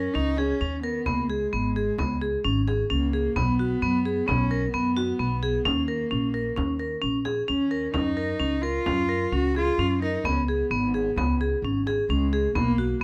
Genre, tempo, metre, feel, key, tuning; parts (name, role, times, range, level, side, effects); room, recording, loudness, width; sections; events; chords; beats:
contemporary instrumental, chamber music in an uneven meter; 131 BPM; 5/4; straight; A4 = 440 Hz
dark cello; melody; 0.0-13.0 s; G#3 to F#4; -32 LUFS; equal
vibraphone with hard mallets; arpeggios; 0.0-13.0 s; B3 to A#4; -28 LUFS; equal
upright bass; bass; 0.0-13.0 s; G#1 to F#2; -31 LUFS; equal
frame drum; percussion; 0.4-12.8 s; -36 LUFS; equal
light reverb; close, detailed microphones; -25 LUFS; mono
0.0-13.0 A section
0.0 F#6 (rootless); 1.1 C#5; 3.4 B5; 5.7 D#5; 8.0 F#6; 10.3 C#5
0.14 0.60 | 1.06 1.52 1.98 2.44 2.90 | 3.36 3.82 4.28 4.74 5.20 | 5.66 6.12 6.58 7.04 7.50 | 7.95 8.41 8.87 9.33 9.79 | 10.25 10.71 11.17 11.63 12.09 | 12.55 13.01